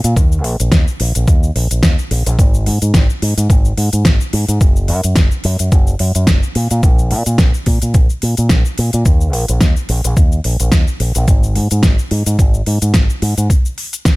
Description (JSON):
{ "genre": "nu-disco, nu disco", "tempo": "108 BPM", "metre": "4/4", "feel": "swing 55% on 16ths", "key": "Eb minor", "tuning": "A4 = 441 Hz", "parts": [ { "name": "fingered electric bass with an envelope filter", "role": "bass", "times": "0.0-13.5 s", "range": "Gb1 to Bb2", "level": "-15 LUFS", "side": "equal", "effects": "none" }, { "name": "pop drum kit", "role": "drums", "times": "0.0-14.2 s", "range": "hi-hat, shaker, snare drum", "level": "-19 LUFS", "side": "equal", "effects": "studio reverb" }, { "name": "electronic kick drum", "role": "drums", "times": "0.2-14.2 s", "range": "none", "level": "-11 LUFS", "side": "equal", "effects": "studio reverb" } ], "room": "digital ambience", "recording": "none", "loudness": "-11 LUFS", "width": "side -21 dB against mid", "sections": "0.0-14.2 A section", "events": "none", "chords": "none" }